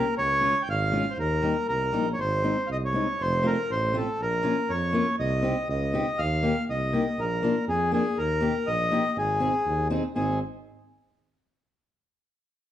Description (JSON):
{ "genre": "alpine folk, alpine dance band", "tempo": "120 BPM", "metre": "2/4", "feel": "straight", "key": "Ab major", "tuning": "A4 = 439 Hz", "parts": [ { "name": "accordion", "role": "melody", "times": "0.0-10.4 s", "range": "Ab4 to G5", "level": "-26 LUFS", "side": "equal", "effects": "none" }, { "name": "fingerpicked steel-string acoustic guitar", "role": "accompaniment", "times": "0.0-10.4 s", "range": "G3 to Ab4", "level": "-29 LUFS", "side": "left 2 dB", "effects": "none" }, { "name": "mellow tuba", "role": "bass", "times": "0.2-10.4 s", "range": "F1 to F2", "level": "-30 LUFS", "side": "right 1 dB", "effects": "none" } ], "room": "moderate large studio reverb, RT60 1.2 s", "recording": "band playing live in one room", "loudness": "-23 LUFS", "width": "side -11 dB against mid", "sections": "0.0-10.2 A section", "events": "none", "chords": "0.2 Db; 1.2 Eb; 2.2 Ab; 3.2 F; 4.2 Bbm; 5.2 Cm; 6.2 Ebadd9; 7.2 Bb; 8.2 Eb; 9.2 Ab", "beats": "| 0.18 0.68 | 1.18 1.69 | 2.19 2.69 | 3.20 3.70 | 4.19 4.69 | 5.18 5.68 | 6.18 6.68 | 7.18 7.67 | 8.17 8.66 | 9.15 9.65 | 10.15" }